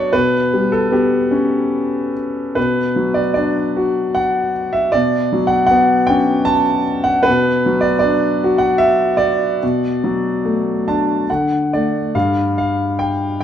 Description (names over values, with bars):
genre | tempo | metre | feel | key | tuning
classical, lyrical solo piano | 68-80 BPM | 3/4 | rubato | B minor | A4 = 443 Hz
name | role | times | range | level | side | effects
warm concert grand piano | solo | 0.0-13.4 s | G2 to A5 | -14 LUFS | equal | none
room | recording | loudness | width
moderate recital hall reverb, RT60 1.4 s | dark, warm production | -14 LUFS | side -9 dB against mid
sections
0.0-12.1 A section; 12.1-13.4 B section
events
grand piano fill 10.4-12.1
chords
0.1 G/B; 2.6 Bm; 4.9 Bm9; 7.3 Bm; 9.6 Bm7; 11.3 D; 12.1 G7(no3)